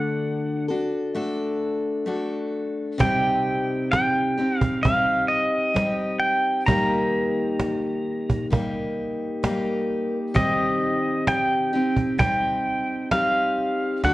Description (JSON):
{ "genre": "acoustic folk duo or small band", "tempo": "65 BPM", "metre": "4/4", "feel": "straight", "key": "unclear", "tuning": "A4 = 440 Hz", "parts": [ { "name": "pedal steel guitar", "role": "melody", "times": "0.0-14.1 s", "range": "Eb5 to Bb5", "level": "-23 LUFS", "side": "equal", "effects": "none" }, { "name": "picked steel-string acoustic guitar", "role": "accompaniment", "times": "0.0-14.1 s", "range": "C3 to A4", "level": "-24 LUFS", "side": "left 1 dB", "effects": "none" }, { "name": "cajon", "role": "percussion", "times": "3.0-14.1 s", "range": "none", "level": "-25 LUFS", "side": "right 2 dB", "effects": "none" } ], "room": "moderate recital hall reverb, RT60 1.4 s", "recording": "worn, warbling old tape, cassette tape, warbly pitch drift", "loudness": "-21 LUFS", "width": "side -17 dB against mid", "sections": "0.0-14.1 A section", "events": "none", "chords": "0.0 D; 3.0 Cm; 6.7 Eb; 10.4 Cm/Eb" }